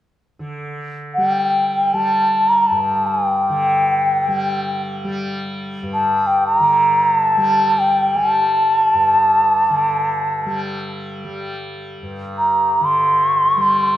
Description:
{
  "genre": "indian classical",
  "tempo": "free time",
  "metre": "none",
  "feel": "none",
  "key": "G raga kafi",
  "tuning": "A4 = 438 Hz",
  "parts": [
    { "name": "tanpura", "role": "drone", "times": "0.4-14.0 s", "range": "G2 to G3", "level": "-26 LUFS", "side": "equal", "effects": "none" },
    { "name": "mellow bansuri", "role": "melody", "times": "1.1-14.0 s", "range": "G5 to C6", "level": "-14 LUFS", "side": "equal", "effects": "slapback echo" }
  ],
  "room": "moderate scoring stage reverb, RT60 1.7 s",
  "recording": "none",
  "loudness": "-14 LUFS",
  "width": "side -12 dB against mid",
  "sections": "0.4-14.0 A section",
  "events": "none",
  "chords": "none"
}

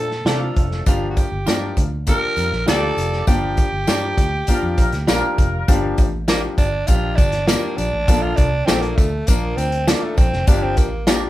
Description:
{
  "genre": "uptempo 1960s-style soul",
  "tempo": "100 BPM",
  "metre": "4/4",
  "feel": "straight",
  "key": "G minor",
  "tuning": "A4 = 440 Hz",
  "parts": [
    { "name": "growling tenor saxophone", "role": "melody", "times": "0.0-11.1 s", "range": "A3 to Bb4", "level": "-24 LUFS", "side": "right 1 dB", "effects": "none" },
    { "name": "warm horn section", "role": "second line", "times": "0.0-5.7 s", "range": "F3 to D5", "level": "-25 LUFS", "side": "equal", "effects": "none" },
    { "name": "clear baby grand piano", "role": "accompaniment", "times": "0.0-11.3 s", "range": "F3 to Bb4", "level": "-25 LUFS", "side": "left 3 dB", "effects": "none" },
    { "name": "vintage muted fingered electric bass", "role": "bass", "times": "0.0-11.2 s", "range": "F1 to C3", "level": "-24 LUFS", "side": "equal", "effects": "none" },
    { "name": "vintage drum kit", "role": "drums", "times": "0.1-11.2 s", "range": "hi-hat, kick drum, snare drum", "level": "-18 LUFS", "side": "equal", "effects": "none" },
    { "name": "clean electric guitar", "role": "stabs", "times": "0.3-11.2 s", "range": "F4 to D5", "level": "-26 LUFS", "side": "right 1 dB", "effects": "none" },
    { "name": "tambourine", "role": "percussion", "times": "0.9-11.2 s", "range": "none", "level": "-34 LUFS", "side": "left 6 dB", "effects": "none" }
  ],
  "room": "moderate studio ambience, RT60 0.5 s",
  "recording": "band playing live in one room",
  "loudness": "-16 LUFS",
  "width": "side -15 dB against mid",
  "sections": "0.0-5.7 A section; 5.7-11.3 B section",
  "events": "tenor saxophone solo 5.7-11.3",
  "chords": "0.0 Bbmaj7; 0.9 Gm7; 8.1 Bbmaj7; 10.5 Gm7"
}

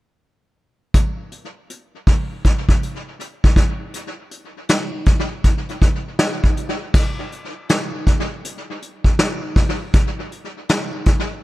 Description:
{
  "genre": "hip hop",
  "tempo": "80 BPM",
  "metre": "4/4",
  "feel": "swing 64% on 16ths",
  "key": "none",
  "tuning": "none",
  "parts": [
    { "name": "vintage brush drum kit", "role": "drums", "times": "0.9-11.3 s", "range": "crash cymbal, hi-hat, kick drum, snare drum", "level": "-17 LUFS", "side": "equal", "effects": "tape echo" }
  ],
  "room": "light reverb",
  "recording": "echo-heavy mix",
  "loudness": "-16 LUFS",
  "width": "side -18 dB against mid",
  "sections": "0.9-6.9 A section; 6.9-11.4 B section",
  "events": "none",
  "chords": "none"
}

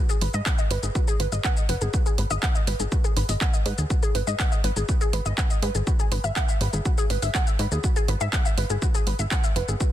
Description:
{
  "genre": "melodic techno",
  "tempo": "122 BPM",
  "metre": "4/4",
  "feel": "straight",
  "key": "G# minor",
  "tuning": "A4 = 440 Hz",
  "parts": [
    { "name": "warbly dusty pluck", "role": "arpeggios", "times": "0.1-9.9 s", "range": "F#4 to F#5", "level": "-29 LUFS", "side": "equal", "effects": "analog chorus, sidechain pumping, dub echo" },
    { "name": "techno drum kit", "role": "drums", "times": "0.1-9.9 s", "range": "handclaps, hi-hat, shaker", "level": "-31 LUFS", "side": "equal", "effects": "none" },
    { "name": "plucky analog bass", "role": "bass", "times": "0.2-9.8 s", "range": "F#1 to G#2", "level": "-26 LUFS", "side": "equal", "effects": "sidechain pumping" },
    { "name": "electronic kick drum", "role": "drums", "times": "0.5-9.9 s", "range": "none", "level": "-23 LUFS", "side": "equal", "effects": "none" }
  ],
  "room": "digital ambience",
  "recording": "dense, heavily limited modern master",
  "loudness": "-21 LUFS",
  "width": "side -12 dB against mid",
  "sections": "0.0-9.9 A section",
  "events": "none",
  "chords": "0.0 G#m7; 5.9 Eadd9"
}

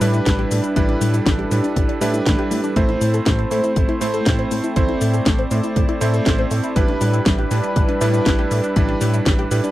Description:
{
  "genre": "italo disco",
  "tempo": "120 BPM",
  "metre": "4/4",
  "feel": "straight",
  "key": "A minor",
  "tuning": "A4 = 440 Hz",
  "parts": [
    { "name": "warm analog pad", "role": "sustained chords", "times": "0.0-9.7 s", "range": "G3 to D5", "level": "-24 LUFS", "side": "left 1 dB", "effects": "chorus" },
    { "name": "wide unison pluck", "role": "arpeggios", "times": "0.0-9.7 s", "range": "G3 to C5", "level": "-27 LUFS", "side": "left 2 dB", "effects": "tape echo" },
    { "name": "clear electric grand piano", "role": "stabs", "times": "0.0-9.7 s", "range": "G3 to C5", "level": "-23 LUFS", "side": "right 3 dB", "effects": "tape echo" },
    { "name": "chorused synth bass", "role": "bass", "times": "0.0-9.6 s", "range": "A1 to A2", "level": "-21 LUFS", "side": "equal", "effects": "none" },
    { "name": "house drum kit", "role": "drums", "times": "0.0-9.7 s", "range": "cabasa, hi-hat, snare drum", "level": "-24 LUFS", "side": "left 1 dB", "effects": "overdrive" },
    { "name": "electronic kick drum", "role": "drums", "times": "0.3-9.4 s", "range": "none", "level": "-20 LUFS", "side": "equal", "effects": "overdrive" }
  ],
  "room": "light reverb",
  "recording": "dry, close 1970s-style studio recording",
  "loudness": "-16 LUFS",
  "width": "side -15 dB against mid",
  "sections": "0.0-2.8 A section; 2.8-9.7 B section",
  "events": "none",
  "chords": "0.0 Em7/A; 2.8 Am; 6.8 Em7/A"
}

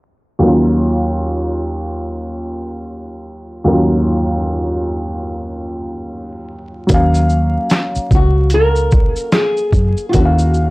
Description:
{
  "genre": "lo-fi hip hop",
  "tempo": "74 BPM",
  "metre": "4/4",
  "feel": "swing 61% on 16ths",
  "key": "Eb minor",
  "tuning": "A4 = 442 Hz",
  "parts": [
    { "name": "dark upright piano", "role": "accompaniment", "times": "0.4-10.7 s", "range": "Eb2 to F5", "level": "-17 LUFS", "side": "equal", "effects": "cassette tape, low-pass filter" },
    { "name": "vintage muted fingered electric bass", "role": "bass", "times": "6.9-10.7 s", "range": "Db2 to Gb2", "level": "-14 LUFS", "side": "equal", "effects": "none" },
    { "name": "boom bap sampler-style drum kit", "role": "drums", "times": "6.9-10.7 s", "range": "handclaps, hi-hat, kick drum, shaker, snare drum", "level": "-15 LUFS", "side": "equal", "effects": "none" },
    { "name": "nylon-string guitar", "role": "melody", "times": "8.1-10.7 s", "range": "F4 to Bb4", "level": "-17 LUFS", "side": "equal", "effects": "low-pass filter" }
  ],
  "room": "light reverb",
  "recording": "dry, gritty hardware recording, vinyl crackle, low-pass filter",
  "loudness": "-13 LUFS",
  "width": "side -22 dB against mid",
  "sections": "0.4-6.9 A section; 6.9-10.7 B section",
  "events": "filter sweep 0.4-6.9",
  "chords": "0.4 Ebm9"
}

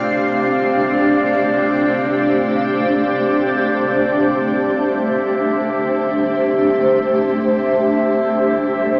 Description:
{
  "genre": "ambient",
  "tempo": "free time",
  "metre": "none",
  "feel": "none",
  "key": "C major",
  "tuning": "A4 = 440 Hz",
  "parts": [
    { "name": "granular cloud pad", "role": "sustained chords", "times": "0.0-9.0 s", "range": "C3 to F5", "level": "-18 LUFS", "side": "equal", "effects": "built-in reverb, analog chorus, shimmer reverb" },
    { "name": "bowed-like drone", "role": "drone", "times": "0.0-9.0 s", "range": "C3 to C4", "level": "-30 LUFS", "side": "equal", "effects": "built-in reverb" },
    { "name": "glass harmonica", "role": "texture", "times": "0.0-9.0 s", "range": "D5 to E5", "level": "-24 LUFS", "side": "equal", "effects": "shimmer reverb" },
    { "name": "warm sub bass", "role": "bass", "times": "4.7-9.0 s", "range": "C2", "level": "-51 LUFS", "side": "equal", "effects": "none" }
  ],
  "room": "wet huge ambient reverb, RT60 7.6 s",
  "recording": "dreamy mix soaked in reverb, small speaker sound",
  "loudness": "-17 LUFS",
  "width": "mono",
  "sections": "0.0-4.7 A section; 4.7-9.0 B section",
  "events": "none",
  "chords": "0.0 Dm/C; 4.7 C69"
}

